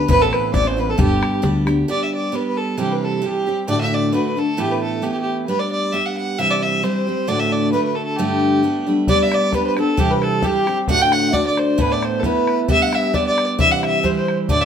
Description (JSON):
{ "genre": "celtic folk, Celtic polka", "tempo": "133 BPM", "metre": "2/4", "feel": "swing 53% on 8ths", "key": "G major", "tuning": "A4 = 438 Hz", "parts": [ { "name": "warm fiddle", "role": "melody", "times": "0.0-14.7 s", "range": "G4 to G5", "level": "-20 LUFS", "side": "equal", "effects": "none" }, { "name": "mellow baroque flute", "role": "second line", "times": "0.0-1.4, 9.1-14.7 s", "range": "G4 to G5", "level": "-24 LUFS", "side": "left 3 dB", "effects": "none" }, { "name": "picked steel-string acoustic guitar", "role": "accompaniment", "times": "0.0-14.7 s", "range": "D2 to G4", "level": "-20 LUFS", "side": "right 1 dB", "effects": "none" }, { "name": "upright bass", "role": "bass", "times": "0.0-1.8 s", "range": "G1 to D2", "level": "-22 LUFS", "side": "equal", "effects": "none" }, { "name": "bodhran", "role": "percussion", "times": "0.1-1.8, 9.1-14.6 s", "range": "none", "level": "-23 LUFS", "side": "left 2 dB", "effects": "none" } ], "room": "wet stone room reverb, RT60 1.0 s", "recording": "band playing live in one room", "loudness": "-16 LUFS", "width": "side -8 dB against mid", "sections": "0.0-1.9 A section; 1.9-9.1 B section; 9.1-14.7 B section", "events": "none", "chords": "0.1 Amadd9; 1.0 G; 2.8 C; 3.7 D; 4.6 Asus2; 5.5 G; 6.4 C; 7.3 D; 8.2 Gadd9; 9.1 G; 10.0 C; 10.9 D; 11.8 Asus2; 12.7 G; 13.6 C", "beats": "| 0.10 0.54 | 0.99 1.44 | 1.89 2.34 | 2.79 3.23 | 3.69 4.13 | 4.58 5.03 | 5.48 5.93 | 6.38 6.83 | 7.28 7.73 | 8.18 8.63 | 9.08 9.53 | 9.98 10.43 | 10.88 11.33 | 11.79 12.23 | 12.69 13.14 | 13.59 14.04 | 14.49" }